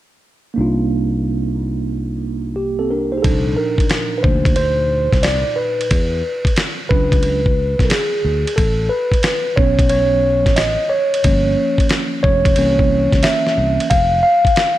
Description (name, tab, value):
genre	hip hop, jazz-hop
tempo	90 BPM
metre	4/4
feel	swing 65% on 16ths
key	unclear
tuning	A4 = 440 Hz
part	mellow tine electric piano	accompaniment	0.5-14.8 s	Bb2 to F5	-17 LUFS	right 1 dB	slow stereo tremolo
part	sustaining fretless electric bass	bass	0.6-14.2 s	F1 to E2	-20 LUFS	equal	none
part	dusty soul sampler-style drum kit	drums	3.2-14.8 s	hi-hat, kick drum, ride cymbal, snare drum	-18 LUFS	equal	none
room	light reverb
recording	none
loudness	-14 LUFS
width	side -14 dB against mid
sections	0.6-3.2 A section; 3.2-14.8 B section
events	tine electric piano solo 3.2-14.8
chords	0.6 Cm11; 5.9 E9 (rootless); 8.6 A69; 11.2 Gm7b5; 12.6 C7b9; 13.9 N.C.